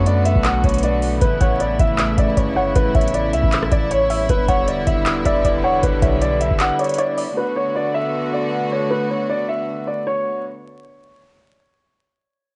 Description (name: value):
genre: hip hop, trap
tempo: 156 BPM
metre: 4/4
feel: half-time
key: B minor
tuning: A4 = 438 Hz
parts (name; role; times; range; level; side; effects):
- dark grand piano; melody; 0.0-10.4 s; B4 to F#5; -24 LUFS; equal; low-pass filter
- warm studio string section; sustained chords; 0.0-10.4 s; C#3 to F#4; -26 LUFS; equal; cassette tape
- warm 808-style bass; bass; 0.0-6.6 s; E1 to F#2; -25 LUFS; equal; none
- booming analog drum machine; drums; 0.1-7.3 s; handclaps, hi-hat, kick drum, rim click; -22 LUFS; equal; overdrive, cassette tape
- warbly dusty pluck; second line; 1.4-7.4 s; C#5 to F#5; -27 LUFS; equal; chorus, cassette tape, analog delay
room: little or no reverb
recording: home recording on cassette, vinyl crackle, nothing above 10.7 kHz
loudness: -19 LUFS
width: mono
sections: 0.0-7.4 A section; 7.4-10.4 B section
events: break 6.6-7.4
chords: 0.0 Bm7; 1.2 Aadd9; 4.3 Em7; 7.4 Bm7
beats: 0.06 0.45 0.83 | 1.22 1.60 1.99 2.37 | 2.75 3.14 3.52 3.91 | 4.29 4.68 5.06 5.45 | 5.83 6.21 6.60 6.99 | 7.37 7.75 8.14 8.52 | 8.91 9.29 9.68 10.06